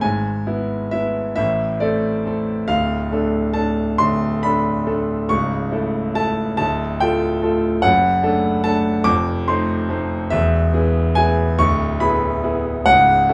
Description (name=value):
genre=classical, romantic character piece for solo piano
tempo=44-49 BPM (dotted quarters)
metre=6/8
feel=rubato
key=unclear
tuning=A4 = 439 Hz
part: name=clear concert grand piano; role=solo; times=0.0-13.3 s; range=C#1 to D6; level=-19 LUFS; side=equal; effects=none
room=moderate studio reverb, RT60 0.7 s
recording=studio reverb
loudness=-19 LUFS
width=mono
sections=0.0-13.3 A section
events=none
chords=0.0 E/G#; 1.4 Am; 2.7 Dm; 5.3 A/C#; 6.6 Dm; 7.8 D/F#; 9.1 F7; 10.3 E; 11.6 E7/D